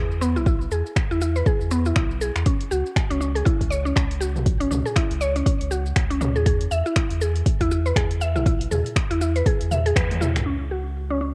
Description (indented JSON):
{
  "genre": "afro house",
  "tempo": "120 BPM",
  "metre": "4/4",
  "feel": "swing 58% on 16ths",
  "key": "unclear",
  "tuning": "A4 = 440 Hz",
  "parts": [
    { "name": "mallet-like synth pluck", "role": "arpeggios", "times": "0.0-11.3 s", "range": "B3 to E5", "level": "-28 LUFS", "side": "equal", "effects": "chorus, sidechain pumping, cassette tape, tape echo" },
    { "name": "warm sub bass", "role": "bass", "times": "0.0-11.3 s", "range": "B1 to E2", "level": "-27 LUFS", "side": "equal", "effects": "sidechain pumping" },
    { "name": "deep house drum kit", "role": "drums", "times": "0.1-11.3 s", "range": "finger snaps, hi-hat, shaker, toms", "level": "-32 LUFS", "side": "equal", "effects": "overdrive, low-pass filter on snare, low-pass filter on perc, low-pass filter on hats, low-pass filter on toms, low-pass filter on room" },
    { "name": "electronic kick drum", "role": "drums", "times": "0.5-10.1 s", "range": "none", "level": "-24 LUFS", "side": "equal", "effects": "none" }
  ],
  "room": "light reverb",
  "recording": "home recording on cassette",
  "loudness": "-22 LUFS",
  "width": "mono",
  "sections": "0.0-10.5 A section",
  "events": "drum fill 10.0-10.5; band accent 10.0",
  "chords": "0.0 E; 2.5 C#m; 6.5 E; 10.5 N.C."
}